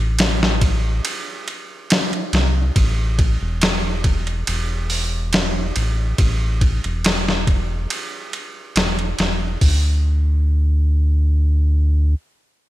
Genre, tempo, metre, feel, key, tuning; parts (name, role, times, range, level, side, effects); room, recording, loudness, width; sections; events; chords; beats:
trip hop; 70 BPM; 4/4; straight; A4 = 440 Hz
round analog bass; bass; 0.0-12.1 s; E1 to D2; -18 LUFS; equal
boom bap sampler-style drum kit; drums; 0.2-9.8 s; hi-hat, kick drum, ride cymbal, snare drum; -19 LUFS; equal
little or no reverb; bright 1980s-style digital production; -16 LUFS; side -15 dB against mid
0.0-9.6 A section; 9.6-12.7 B section
0.18 1.04 1.90 | 2.75 3.61 4.47 5.33 | 6.18 7.04 7.90 8.76 | 9.61 10.47 11.33